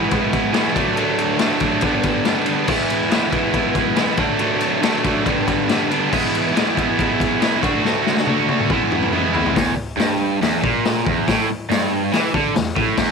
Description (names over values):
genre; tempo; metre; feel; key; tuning
garage rock duo or trio; 140 BPM; 4/4; straight; E mixolydian; A4 = 440 Hz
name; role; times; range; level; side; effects
cranked stack guitar; riff; 0.0-13.1 s; E2 to F#4; -18 LUFS; right 2 dB; overdrive
raw garage drum kit; drums; 0.1-13.1 s; crash cymbal, hi-hat, kick drum, ride cymbal, snare drum, toms; -21 LUFS; left 4 dB; none
room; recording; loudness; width
light reverb, small room ambience; 1960s-style stereo; -16 LUFS; side -5 dB against mid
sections
0.0-9.6 A section; 9.6-13.1 B section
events
drum fill 7.8-9.6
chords
0.0 E; 0.8 D; 1.8 G; 2.7 E; 4.2 D; 5.3 G; 6.1 E; 7.6 D; 8.7 E; 9.6 E5